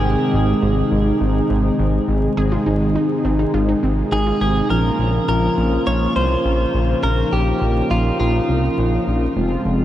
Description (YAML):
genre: pop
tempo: 103 BPM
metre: 4/4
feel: straight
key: unclear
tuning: A4 = 436 Hz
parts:
  - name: direct-recorded clean electric guitar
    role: melody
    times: 0.0-9.0 s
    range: F4 to Db5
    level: -23 LUFS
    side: equal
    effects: analog chorus, analog delay
  - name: mellow synth brass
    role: accompaniment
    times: 0.0-9.8 s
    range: F3 to Ab4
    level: -22 LUFS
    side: equal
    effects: chorus
  - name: sweeping resonant pad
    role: sustained chords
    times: 0.0-9.8 s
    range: C3 to F4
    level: -23 LUFS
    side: equal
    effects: wide subtle chorus
  - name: fat analog bass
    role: bass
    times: 0.0-9.8 s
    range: F1 to C2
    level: -20 LUFS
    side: equal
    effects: none
  - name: wide unison pluck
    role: arpeggios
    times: 2.4-4.6 s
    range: C4 to Ab4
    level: -29 LUFS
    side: right 1 dB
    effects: analog delay
room: wet huge ambient reverb, RT60 7.6 s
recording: dreamy mix soaked in reverb, vinyl crackle, nothing above 10.4 kHz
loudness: -16 LUFS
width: side -12 dB against mid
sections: 0.0-2.4 A section; 2.4-4.7 B section; 4.7-9.8 C section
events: none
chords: 0.0 Ab; 4.7 Bbm